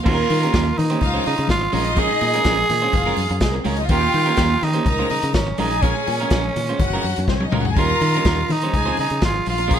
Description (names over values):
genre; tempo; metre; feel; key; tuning
disco; 124 BPM; 4/4; straight; unclear; A4 = 443 Hz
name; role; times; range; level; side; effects
warm symphonic violin section; second line; 0.0-9.8 s; Ab3 to Bb5; -25 LUFS; left 2 dB; none
electric guitar at the edge of break-up; accompaniment; 0.0-9.8 s; G3 to C5; -26 LUFS; right 4 dB; none
raspy tenor saxophone; melody; 0.1-9.8 s; Db4 to Ab4; -22 LUFS; right 3 dB; none
fingered electric bass; bass; 0.1-9.8 s; Gb1 to Eb3; -24 LUFS; left 1 dB; none
vintage drum kit; drums; 0.1-9.8 s; crash cymbal, hi-hat, kick drum, snare drum, toms; -23 LUFS; left 1 dB; none
congas; percussion; 0.3-9.8 s; none; -31 LUFS; left 7 dB; none
room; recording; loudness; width
light reverb; none; -17 LUFS; side -9 dB against mid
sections
0.1-9.8 A section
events
drum fill 7.3-7.8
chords
0.1 Eb7; 1.0 Dbmaj7; 1.7 Bbm7; 2.9 Gbmaj9; 3.9 Eb7; 4.9 Dbmaj7; 5.6 Bbm7; 6.8 Gbmaj9; 7.8 Eb7; 8.7 Dbmaj7